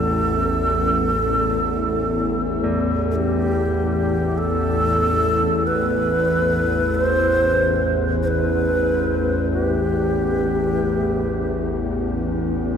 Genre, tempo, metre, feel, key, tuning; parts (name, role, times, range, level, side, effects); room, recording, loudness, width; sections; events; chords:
ambient; free time; A minor; A4 = 440 Hz
breathy bright long shakuhachi; melody; 0.0-12.1 s; G4 to C5; -21 LUFS; equal; ping-pong delay
bowed-like drone; drone; 0.0-12.8 s; A1 to E2; -21 LUFS; equal; built-in reverb
clear concert grand piano; arpeggios; 2.6-12.8 s; E2 to E4; -34 LUFS; equal
wet cathedral reverb, RT60 6.3 s; in a vast, echoing space; -18 LUFS; side -7 dB against mid
0.0-12.8 A section
0.0 Asus2